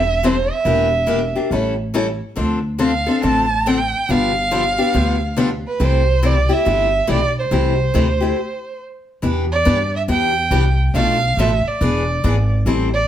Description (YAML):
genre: acoustic string swing (jazz manouche)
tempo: 140 BPM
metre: 4/4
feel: swing 63% on 8ths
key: unclear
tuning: A4 = 440 Hz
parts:
  - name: warm violin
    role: melody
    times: 0.0-13.1 s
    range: B4 to A5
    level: -19 LUFS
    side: right 3 dB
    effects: none
  - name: upright bass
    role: bass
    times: 0.0-13.1 s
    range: E1 to G2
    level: -20 LUFS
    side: equal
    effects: none
  - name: picked steel-string acoustic guitar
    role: accompaniment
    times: 0.2-12.9 s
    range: B2 to A4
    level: -20 LUFS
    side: left 3 dB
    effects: none
room: moderate studio reverb, RT60 0.7 s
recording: heard from further back in the room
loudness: -15 LUFS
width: side -10 dB against mid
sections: 0.0-9.2 A section; 9.2-13.1 B section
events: stop 8.4-9.2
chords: 0.0 Am7; 0.7 Em7b5; 1.5 A7; 2.4 Dm7; 4.1 G7; 5.8 C6; 9.2 Em7; 10.9 Bm7b5; 11.8 E7